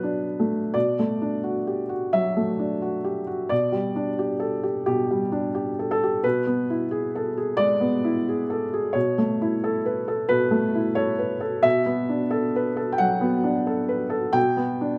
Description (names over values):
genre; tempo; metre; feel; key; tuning
neoclassical minimalist piano; 88 BPM; 4/4; rubato; B minor; A4 = 440 Hz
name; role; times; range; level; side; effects
felt-muted upright piano; solo; 0.0-15.0 s; B2 to G5; -24 LUFS; equal; none
room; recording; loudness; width
little or no reverb; recorded outdoors, with no room sound; -24 LUFS; mono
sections
0.7-15.0 A section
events
none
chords
0.0 Bm7; 3.5 G/B; 6.2 E/B; 9.0 A/B; 11.7 Bm7; 14.4 G/B